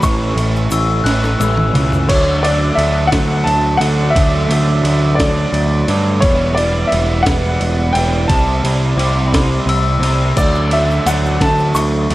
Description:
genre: indie rock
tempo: 58 BPM (dotted quarters)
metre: 6/8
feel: straight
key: D major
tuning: A4 = 440 Hz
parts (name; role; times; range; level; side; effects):
- warm upright piano; melody; 0.0-12.1 s; C#5 to C#6; -18 LUFS; equal; plate reverb, tape echo
- electric guitar through a small old amp; riff; 0.0-12.1 s; E3 to G4; -32 LUFS; left 8 dB; none
- fuzz guitar; riff; 0.0-12.1 s; A2 to E4; -19 LUFS; right 3 dB; distortion, analog chorus, tape echo
- growling picked electric bass; bass; 0.0-12.1 s; E1 to G2; -16 LUFS; equal; overdrive
- breakbeat sampler-style drum kit; drums; 0.0-12.1 s; crash cymbal, kick drum, ride cymbal, snare drum, toms; -20 LUFS; equal; none
- egg shaker; percussion; 0.0-2.0, 10.4-11.9 s; none; -32 LUFS; left 6 dB; none
- glockenspiel with soft plastic mallets; second line; 0.7-2.0, 9.0-10.2 s; B5 to F#6; -24 LUFS; left 6 dB; plate reverb
room: light reverb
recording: dark, warm production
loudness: -12 LUFS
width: side -16 dB against mid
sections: 0.0-2.1 A section; 2.1-12.1 B section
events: drum fill 1.1-2.1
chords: 0.0 A7; 2.1 Dmaj7; 6.2 Em7; 8.3 C6; 10.4 Dmaj7

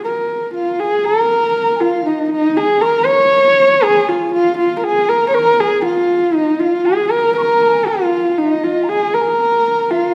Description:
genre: mongolian traditional, Mongolian folk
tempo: 119 BPM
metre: 4/4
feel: straight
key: Bb yu mode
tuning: A4 = 440 Hz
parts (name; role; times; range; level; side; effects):
- dark horsehead fiddle; melody; 0.0-10.1 s; Eb4 to Db5; -15 LUFS; equal; none
- mellow large dizi; second line; 0.6-10.1 s; Eb5 to Db6; -23 LUFS; equal; none
room: wet recital hall reverb, RT60 1.4 s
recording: dark, warm production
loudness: -15 LUFS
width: mono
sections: 0.0-1.3 A section; 1.3-10.1 B section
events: none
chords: none

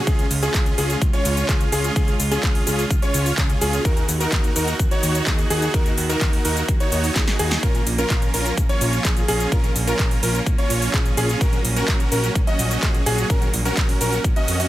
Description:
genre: EDM, festival progressive house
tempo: 127 BPM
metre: 4/4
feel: straight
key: Db major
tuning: A4 = 443 Hz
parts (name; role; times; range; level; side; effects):
- rich chamber string section; sustained chords; 0.0-14.7 s; Db3 to Gb4; -29 LUFS; right 3 dB; sidechain pumping
- dark baby grand piano; arpeggios; 0.0-14.7 s; Ab4 to Eb5; -27 LUFS; left 1 dB; sidechain pumping, tape echo
- supersaw chords; riff; 0.0-14.7 s; Db4 to Eb5; -25 LUFS; right 1 dB; sidechain pumping, tape echo
- fat analog bass; bass; 0.1-14.7 s; Bb1 to F2; -25 LUFS; equal; tube saturation, sidechain pumping
- big-room dance drum kit; drums; 0.1-14.7 s; handclaps, hi-hat, shaker, snare drum; -26 LUFS; equal; none
- electronic kick drum; drums; 0.1-14.3 s; none; -20 LUFS; equal; none
room: little or no reverb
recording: none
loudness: -17 LUFS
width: side -15 dB against mid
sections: 0.0-14.7 A section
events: drum fill 7.2-7.6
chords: 0.1 Db; 3.9 Ebm; 7.6 Bbm; 11.4 Gb/Bb

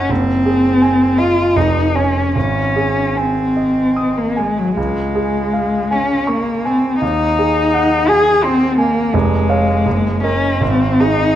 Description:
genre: classical, romantic duo for cello and grand piano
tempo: 73-86 BPM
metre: 3/4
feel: rubato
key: unclear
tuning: A4 = 440 Hz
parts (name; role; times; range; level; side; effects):
- rich cello; melody; 0.0-11.4 s; Gb3 to Ab4; -15 LUFS; left 2 dB; none
- bright concert grand piano; accompaniment; 0.0-11.4 s; F1 to Eb6; -18 LUFS; right 3 dB; none
room: wet recital hall reverb, RT60 1.4 s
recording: dark, warm production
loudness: -13 LUFS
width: side -11 dB against mid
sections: 0.0-11.4 A section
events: none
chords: 0.1 Ab7/Gb; 1.6 Db/F; 2.4 Ab; 4.8 Db; 7.0 Ab7/Eb; 9.1 Db/F; 9.9 Ebm/Gb; 10.6 Ab

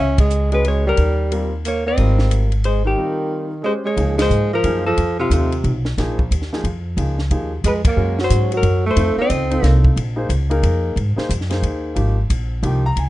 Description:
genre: jazz, small-group swing and bop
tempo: 180 BPM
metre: 3/4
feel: swing 63% on 8ths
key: Ab major, Db major from 4.0 s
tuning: A4 = 436 Hz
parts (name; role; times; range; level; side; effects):
- vintage hollow-body jazz guitar; melody; 0.0-9.8 s; F4 to Fb5; -23 LUFS; left 4 dB; none
- breathy tenor saxophone; second line; 0.0-9.8 s; C3 to Db4; -21 LUFS; right 3 dB; none
- upright bass; bass; 0.0-13.1 s; Ab1 to Ab2; -18 LUFS; equal; none
- compact cocktail drum kit; drums; 0.2-13.1 s; hi-hat, kick drum, ride cymbal, snare drum; -23 LUFS; equal; none
- warm grand piano; accompaniment; 0.5-13.1 s; F3 to Bb5; -25 LUFS; left 1 dB; none
room: light reverb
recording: rough home demo mix, nothing above 10.3 kHz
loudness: -16 LUFS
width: side -16 dB against mid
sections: 0.0-4.0 A section; 4.0-12.0 B section; 12.0-13.1 C section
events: band accent 0.1, 4.1, 7.8; break 3.0-4.0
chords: 0.0 Db5; 1.0 Eb; 2.0 Abmaj7; 4.0 Dbmaj7; 5.0 F7; 6.0 Bb5; 7.0 Db; 8.0 Gb; 9.0 F7; 10.0 Bbm7; 11.0 Ab7; 12.0 Abmaj7

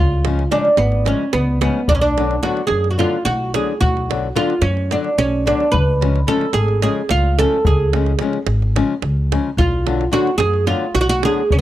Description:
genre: balkan folk, Balkan wedding band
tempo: 219 BPM (eighths)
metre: 7/8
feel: straight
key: unclear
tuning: A4 = 441 Hz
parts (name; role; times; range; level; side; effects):
- oud; melody; 0.0-11.6 s; B3 to B4; -18 LUFS; right 2 dB; none
- upright bass; bass; 0.0-11.6 s; G#1 to F#2; -19 LUFS; equal; none
- davul; percussion; 0.2-11.6 s; none; -21 LUFS; right 1 dB; none
- flamenco guitar; accompaniment; 0.3-11.4 s; C#3 to D4; -22 LUFS; left 7 dB; none
room: studio reverb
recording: dry, close 1970s-style studio recording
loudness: -15 LUFS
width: side -13 dB against mid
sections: 0.0-11.6 A section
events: none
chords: 0.0 C#; 1.9 Bm; 5.7 C#; 9.6 Bm

